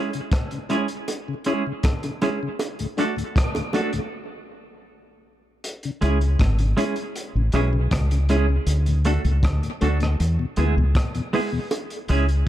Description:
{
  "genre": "dub reggae",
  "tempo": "79 BPM",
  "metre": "4/4",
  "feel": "straight",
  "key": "C# phrygian",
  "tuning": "A4 = 440 Hz",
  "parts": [
    { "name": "semi-hollow electric guitar", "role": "accompaniment", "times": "0.0-12.3 s", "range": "G#3 to A4", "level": "-26 LUFS", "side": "right 3 dB", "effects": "tremolo, tape echo" },
    { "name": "mellow tonewheel organ", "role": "accompaniment", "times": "0.1-11.6 s", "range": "D2 to F#4", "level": "-30 LUFS", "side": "left 4 dB", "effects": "slow rotary speaker" },
    { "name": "crunchy breakbeat drum kit", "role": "drums", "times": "0.1-12.5 s", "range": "hi-hat, kick drum, rim click", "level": "-25 LUFS", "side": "equal", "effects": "none" },
    { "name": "bongos", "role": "percussion", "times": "1.1-3.9, 11.7-11.9 s", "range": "none", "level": "-32 LUFS", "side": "right 3 dB", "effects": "tape echo" },
    { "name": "deep dub fingered electric bass", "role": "bass", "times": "6.0-12.4 s", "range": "G#1 to E2", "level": "-20 LUFS", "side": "equal", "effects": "none" }
  ],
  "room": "light reverb, small room ambience",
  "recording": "dark, warm production",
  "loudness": "-20 LUFS",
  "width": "side -13 dB against mid",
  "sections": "0.0-12.5 A section",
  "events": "break 0.0-5.6; part muted 5.6-11.7",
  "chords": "0.0 C#m; 2.6 D; 4.1 N.C.; 5.6 C#m; 8.7 D; 10.2 E; 11.7 C#m"
}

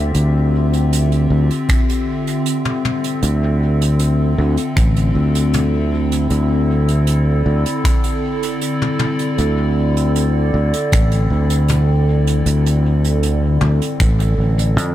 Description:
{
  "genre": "ambient dub",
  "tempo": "78 BPM",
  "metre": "4/4",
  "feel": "straight",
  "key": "D minor",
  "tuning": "A4 = 440 Hz",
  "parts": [
    { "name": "warbly tape-like pad", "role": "sustained chords", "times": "0.0-14.9 s", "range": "D3 to E5", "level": "-20 LUFS", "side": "left 1 dB", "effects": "chorus, built-in reverb, phaser" },
    { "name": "overdriven fingered electric bass", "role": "bass", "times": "0.0-14.9 s", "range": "A1 to F2", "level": "-15 LUFS", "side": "equal", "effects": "none" },
    { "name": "jazz brush drum kit", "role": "drums", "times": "0.1-14.9 s", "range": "finger snaps, hi-hat, toms", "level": "-25 LUFS", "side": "equal", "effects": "dub echo" },
    { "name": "electronic kick drum", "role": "drums", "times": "1.7-14.2 s", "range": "none", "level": "-17 LUFS", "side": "equal", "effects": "none" }
  ],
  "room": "small room ambience",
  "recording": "none",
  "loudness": "-14 LUFS",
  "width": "side -13 dB against mid",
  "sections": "0.0-14.9 A section",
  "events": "none",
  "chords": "0.0 Dm11"
}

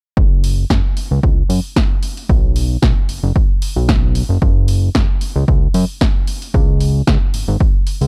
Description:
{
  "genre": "nu-disco, nu disco",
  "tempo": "113 BPM",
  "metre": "4/4",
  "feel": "swing 55% on 16ths",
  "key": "unclear",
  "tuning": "A4 = 440 Hz",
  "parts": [
    { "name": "fat analog bass", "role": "bass", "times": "0.2-8.1 s", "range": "F#1 to F#2", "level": "-18 LUFS", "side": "equal", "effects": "none" },
    { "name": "electronic kick drum", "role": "drums", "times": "0.2-7.7 s", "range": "none", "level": "-17 LUFS", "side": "equal", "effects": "studio reverb" },
    { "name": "house drum kit", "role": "drums", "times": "0.4-8.1 s", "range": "hi-hat, snare drum", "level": "-25 LUFS", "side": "equal", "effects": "studio reverb" }
  ],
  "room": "digital ambience",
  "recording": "dry, gritty hardware recording",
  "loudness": "-15 LUFS",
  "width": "mono",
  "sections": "0.2-8.1 A section",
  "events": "none",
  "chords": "none"
}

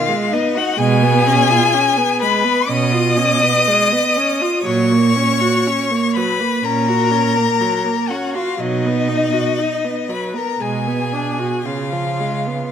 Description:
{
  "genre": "classical, slow romantic movement for string quartet",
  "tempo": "51-64 BPM",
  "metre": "4/4",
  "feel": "rubato",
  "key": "F# major",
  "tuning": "A4 = 439 Hz",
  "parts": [
    { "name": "rich violin", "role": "melody", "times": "0.0-12.7 s", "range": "D#5 to D#6", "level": "-19 LUFS", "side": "left 7 dB", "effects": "none" },
    { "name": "rich violin", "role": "second line", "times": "0.0-12.7 s", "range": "D#4 to D#5", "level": "-22 LUFS", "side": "left 2 dB", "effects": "none" },
    { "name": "rich viola", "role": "accompaniment", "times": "0.0-12.7 s", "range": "C#3 to F#4", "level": "-21 LUFS", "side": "right 2 dB", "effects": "none" },
    { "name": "rich cello", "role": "bass", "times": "0.8-12.6 s", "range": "A#2 to C#3", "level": "-20 LUFS", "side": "right 5 dB", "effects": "none" }
  ],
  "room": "moderate scoring stage reverb, RT60 1.8 s",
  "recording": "none",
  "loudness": "-14 LUFS",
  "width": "side -8 dB against mid",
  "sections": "0.0-12.7 A section",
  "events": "none",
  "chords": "0.0 G#m; 0.8 C#7/B; 4.6 F#/A#; 8.6 B; 10.6 G#m7b5/B; 11.6 C#7"
}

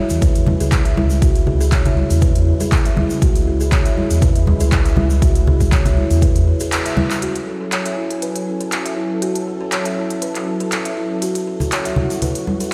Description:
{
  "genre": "afro house",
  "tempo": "120 BPM",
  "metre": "4/4",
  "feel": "swing 54% on 16ths",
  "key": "F# minor",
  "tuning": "A4 = 440 Hz",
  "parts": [
    { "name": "warm analog pad", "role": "sustained chords", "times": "0.0-12.7 s", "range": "C#3 to G#5", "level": "-29 LUFS", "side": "equal", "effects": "chorus, sidechain pumping" },
    { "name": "buzzing kalimba", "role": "arpeggios", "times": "0.0-12.7 s", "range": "E4 to E5", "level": "-25 LUFS", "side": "equal", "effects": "sidechain pumping, low-pass filter, dub echo" },
    { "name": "smooth gliding synth bass", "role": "bass", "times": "0.1-6.5 s", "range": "C#2 to E2", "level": "-19 LUFS", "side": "equal", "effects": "sidechain pumping" },
    { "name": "deep house drum kit", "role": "drums", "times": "0.1-12.7 s", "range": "handclaps, hi-hat", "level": "-27 LUFS", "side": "equal", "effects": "none" },
    { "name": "tube shaker", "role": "percussion", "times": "0.1-7.2, 11.2-12.7 s", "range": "none", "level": "-37 LUFS", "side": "equal", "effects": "none" },
    { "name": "electronic kick drum", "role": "drums", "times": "0.2-6.3 s", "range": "none", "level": "-18 LUFS", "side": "equal", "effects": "overdrive" },
    { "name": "congas", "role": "percussion", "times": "0.2-7.1, 11.6-12.6 s", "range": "none", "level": "-24 LUFS", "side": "equal", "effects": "none" }
  ],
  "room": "light reverb",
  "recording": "played on a big sound system in a bare room, stone room reverb",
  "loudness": "-17 LUFS",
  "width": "mono",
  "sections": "0.0-7.2 A section; 7.2-12.7 B section",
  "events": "break 6.7-7.2; band accent 6.7; filter sweep on kalimba 7.2-12.7",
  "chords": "0.0 C#m; 7.2 F#m7"
}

